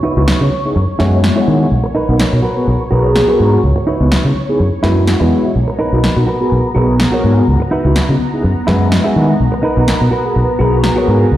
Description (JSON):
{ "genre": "filtered disco house", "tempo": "125 BPM", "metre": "4/4", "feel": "swing 54% on 16ths", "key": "G# minor", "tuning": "A4 = 439 Hz", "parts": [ { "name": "phased string machine", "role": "sustained chords", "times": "0.0-11.4 s", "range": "B3 to C#6", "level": "-23 LUFS", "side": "left 1 dB", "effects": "ensemble chorus, phaser, low-pass filter" }, { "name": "clean electric guitar", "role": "riff", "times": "0.0-11.2 s", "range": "D#4 to C#5", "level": "-19 LUFS", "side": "right 1 dB", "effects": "low-pass filter" }, { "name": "mellow synth brass", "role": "accompaniment", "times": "0.2-11.3 s", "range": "G#3 to A#5", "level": "-16 LUFS", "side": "equal", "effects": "chorus, phaser, low-pass filter" }, { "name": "modern bright fingered electric bass", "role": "bass", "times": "0.2-11.4 s", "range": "B1 to D#3", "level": "-13 LUFS", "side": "equal", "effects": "low-pass filter" }, { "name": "electronic snare drum", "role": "drums", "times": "0.3-10.9 s", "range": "none", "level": "-20 LUFS", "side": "equal", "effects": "overdrive" } ], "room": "light reverb, digital ambience", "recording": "played on a big sound system in a bare room, stone room reverb", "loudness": "-11 LUFS", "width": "side -13 dB against mid", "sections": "0.0-11.4 A section", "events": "filter sweep 0.0-11.4", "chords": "0.0 C#m11; 0.8 F#9sus4; 1.7 Bmaj7; 2.4 G#m9/B; 3.6 C#m11; 4.6 F#9sus4; 5.6 Bmaj7; 6.3 G#m9/B; 7.5 C#m11; 8.4 F#9sus4; 9.4 Bmaj7; 10.1 G#m9/B", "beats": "0.28 0.76 1.24 | 1.72 2.20 2.68 3.16 | 3.64 4.12 4.60 5.08 | 5.56 6.04 6.52 7.00 | 7.48 7.96 8.44 8.92 | 9.40 9.88 10.36 10.84 | 11.32" }